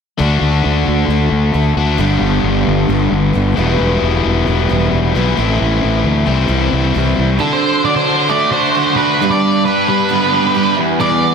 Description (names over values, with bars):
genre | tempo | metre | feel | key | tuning
rock | 133 BPM | 4/4 | straight | unclear | A4 = 440 Hz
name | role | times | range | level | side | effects
picked twelve-string acoustic guitar | accompaniment | 0.2-11.3 s | E2 to G4 | -21 LUFS | right 6 dB | none
distorted electric guitar | riff | 0.2-11.3 s | E2 to G4 | -16 LUFS | left 6 dB | distortion, slapback echo
fuzz fingered electric bass | bass | 0.2-7.4 s | E1 to D2 | -15 LUFS | right 1 dB | overdrive
octave-fuzz lead guitar | melody | 7.4-11.3 s | A4 to D5 | -15 LUFS | right 2 dB | distortion, slapback echo
raw garage guitar | riff | 7.4-11.3 s | E2 to G4 | -20 LUFS | right 11 dB | overdrive, slapback echo
room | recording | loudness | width
moderate scoring stage reverb, RT60 2.0 s, digital ambience | big arena sound | -12 LUFS | side -6 dB against mid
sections
0.2-7.4 A section; 7.4-11.3 B section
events
none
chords
0.2 D; 2.0 G; 3.6 Em; 5.4 Am; 6.3 C; 7.4 D; 9.2 G; 10.8 Em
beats
| 0.19 0.64 1.09 1.54 | 1.99 2.44 2.89 3.34 | 3.79 4.24 4.70 5.15 | 5.60 6.05 6.50 6.95 | 7.40 7.85 8.30 8.75 | 9.20 9.65 10.10 10.55 | 11.01